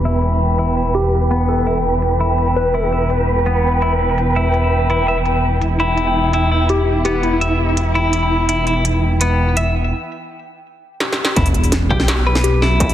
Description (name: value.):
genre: half-time drum and bass.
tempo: 167 BPM.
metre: 4/4.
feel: half-time.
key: E minor.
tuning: A4 = 439 Hz.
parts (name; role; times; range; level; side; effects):
dark studio cello section; sustained chords; 0.0-9.9 s; E3 to B4; -21 LUFS; right 1 dB; sidechain pumping.
dark detuned saw bass; bass; 0.0-12.9 s; E1 to B1; -18 LUFS; equal; none.
industrial drum kit; drums; 0.0-12.9 s; hi-hat, snare drum; -20 LUFS; equal; none.
pulsing gated texture; texture; 0.0-9.9 s; G5; -25 LUFS; equal; chorus, built-in reverb.
twelve-string electric guitar; arpeggios; 0.1-12.9 s; B3 to E5; -22 LUFS; left 2 dB; low-pass filter, ping-pong delay.
soft struck synth lead; melody; 0.9-2.8, 6.7-7.4, 12.4-12.7 s; E4 to B4; -23 LUFS; left 3 dB; chorus, dub echo.
electronic kick drum; drums; 11.4-12.9 s; none; -18 LUFS; equal; distortion.
sub drop; sound effects; 11.4-12.8 s; none; -24 LUFS; equal; none.
room: moderate lush hall reverb, RT60 2.0 s.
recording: heavily compressed radio sound, low-pass filter.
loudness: -14 LUFS.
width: side -11 dB against mid.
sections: 0.0-11.4 A section; 11.4-12.9 B section.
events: filter sweep on clean electric guitar 0.0-11.4; filter sweep 0.0-11.4; break 9.9-11.4; drum fill 11.0-11.4; drop 11.4-12.9; impact 11.4-12.8.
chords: 0.0 E5.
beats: 0.23 0.59 0.95 | 1.31 1.67 2.02 2.38 | 2.74 3.10 3.46 3.82 | 4.18 4.54 4.90 5.26 | 5.62 5.98 6.34 6.70 | 7.05 7.41 7.77 8.13 | 8.49 8.85 9.21 9.57 | 9.93 10.29 10.65 11.01 | 11.37 11.72 12.08 12.44 | 12.80.